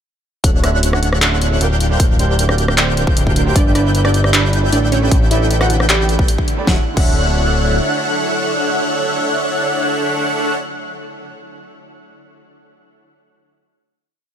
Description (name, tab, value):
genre	future bass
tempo	154 BPM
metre	4/4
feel	half-time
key	D major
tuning	A4 = 438 Hz
part	shimmering ambient pad	sustained chords	1.6-10.6 s	D3 to C#5	-27 LUFS	right 1 dB	chorus, built-in reverb, sidechain pumping
part	airy dreamy lead	arpeggios	0.4-10.6 s	F#6 to G6	-24 LUFS	equal	chorus, sidechain pumping, ping-pong delay
part	supersaw chords	riff	0.4-10.6 s	D4 to G5	-21 LUFS	equal	phaser, cassette tape, sidechain pumping
part	fat analog bass	bass	0.4-7.8 s	D1 to A1	-16 LUFS	equal	sidechain pumping
part	big-room dance drum kit	drums	0.4-7.1 s	crash cymbal, handclaps, hi-hat, rim click, snare drum	-19 LUFS	left 1 dB	none
part	electronic kick drum	drums	0.4-7.1 s	none	-15 LUFS	equal	none
part	bright grand piano	accompaniment	0.6-11.3 s	D3 to F#5	-26 LUFS	right 6 dB	sidechain pumping, ping-pong delay
part	wide unison pluck	melody	3.6-11.2 s	C#4 to G5	-21 LUFS	right 2 dB	sidechain pumping, digital delay
room	light reverb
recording	none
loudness	-13 LUFS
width	side -9 dB against mid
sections	0.4-6.7 drop; 6.7-9.8 final chord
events	drop 0.4-6.7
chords	0.4 Dmaj9; 1.8 Bb6/D; 3.6 G6; 4.9 A9sus4; 6.7 Dmaj9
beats	| 0.44 0.83 1.22 1.61 | 2.00 2.39 2.78 3.17 | 3.56 3.95 4.33 4.72 | 5.11 5.50 5.89 6.28 | 6.67 7.06 7.45 7.84 | 8.23 8.62 9.01 9.40